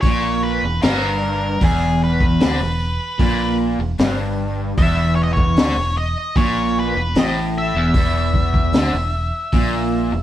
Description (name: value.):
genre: psychedelic rock.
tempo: 76 BPM.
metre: 4/4.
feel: straight.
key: unclear.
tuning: A4 = 440 Hz.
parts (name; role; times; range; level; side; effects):
octave-fuzz lead guitar; melody; 0.0-10.2 s; G#4 to E5; -23 LUFS; left 1 dB; distortion.
crunchy overdriven guitar; riff; 0.0-10.2 s; E2 to D3; -20 LUFS; right 1 dB; harmonic tremolo.
fingered electric bass; bass; 0.0-10.2 s; E1 to D2; -23 LUFS; equal; none.
crunchy breakbeat drum kit; drums; 0.0-9.7 s; hi-hat, kick drum, snare drum; -18 LUFS; equal; none.
room: moderate stone room reverb, RT60 0.9 s.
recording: band playing live in one room.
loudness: -16 LUFS.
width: side -12 dB against mid.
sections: 0.0-10.2 A section.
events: none.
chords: 0.0 E5.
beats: 0.03 0.82 | 1.61 2.40 3.20 3.99 | 4.78 5.57 6.36 7.16 | 7.95 8.74 9.54.